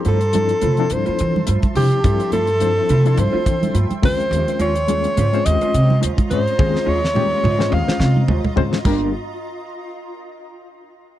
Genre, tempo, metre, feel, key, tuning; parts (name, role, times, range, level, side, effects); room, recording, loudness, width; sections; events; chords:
electric jazz fusion; 106 BPM; 4/4; swing 56% on 16ths; G minor; A4 = 445 Hz
clear alto saxophone; melody; 0.0-8.3 s; G4 to F5; -21 LUFS; right 1 dB
barky reed electric piano; accompaniment; 0.0-9.1 s; F3 to Db5; -23 LUFS; left 10 dB; overdrive, fast tremolo
shimmering ambient pad; sustained chords; 0.0-9.1 s; F3 to C6; -31 LUFS; equal; chorus, built-in reverb
damped 70s drum kit; drums; 0.0-9.0 s; crash cymbal, hi-hat, kick drum, snare drum, toms; -21 LUFS; right 1 dB
mellow electric guitar; stabs; 0.1-9.1 s; Ab3 to C5; -26 LUFS; right 3 dB; analog chorus
upright bass; bass; 0.1-9.1 s; G1 to E3; -19 LUFS; right 1 dB
congas; percussion; 0.4-9.1 s; -25 LUFS; right 4 dB
studio ambience; dry, close 1970s-style studio recording; -15 LUFS; side -13 dB against mid
0.0-8.9 A section; 8.9-11.1 B section
alto saxophone solo 0.0-8.9; drum fill 6.6-8.9
0.0 G13sus4; 4.0 Eb13sus4; 8.9 Gm